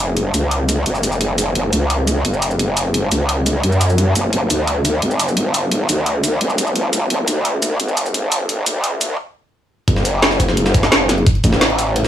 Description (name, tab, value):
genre	dark technical drum and bass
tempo	173 BPM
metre	4/4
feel	straight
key	F# phrygian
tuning	A4 = 440 Hz
part	growl bass	bass	0.0-12.1 s	F#1 to F#2	-16 LUFS	equal	chorus
part	drum and bass drum kit	drums	0.2-12.1 s	hi-hat, shaker, snare drum	-19 LUFS	equal	overdrive, high-pass filter on hats, studio reverb, high-pass filter on snare, high-pass filter on perc
part	electronic kick drum	drums	9.9-11.5 s	none	-15 LUFS	equal	overdrive, studio reverb
part	jungle sampler-style drum kit	drums	9.9-12.1 s	hi-hat, snare drum	-22 LUFS	left 1 dB	high-pass filter on hats, studio reverb, high-pass filter on snare, high-pass filter on room
room	little or no reverb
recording	high-pass filter, small room ambience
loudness	-15 LUFS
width	side -10 dB against mid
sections	0.0-9.9 A section; 9.9-12.1 B section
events	build-up 0.0-9.9; stop 9.2-9.9; drop 9.9-12.1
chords	none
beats	| 0.17 0.51 0.86 1.21 | 1.55 1.90 2.25 2.59 | 2.94 3.29 3.63 3.98 | 4.33 4.67 5.02 5.37 | 5.72 6.06 6.41 6.76 | 7.10 7.45 7.80 8.14 | 8.49 8.84 9.18 9.53 | 9.88 10.22 10.57 10.92 | 11.27 11.61 11.96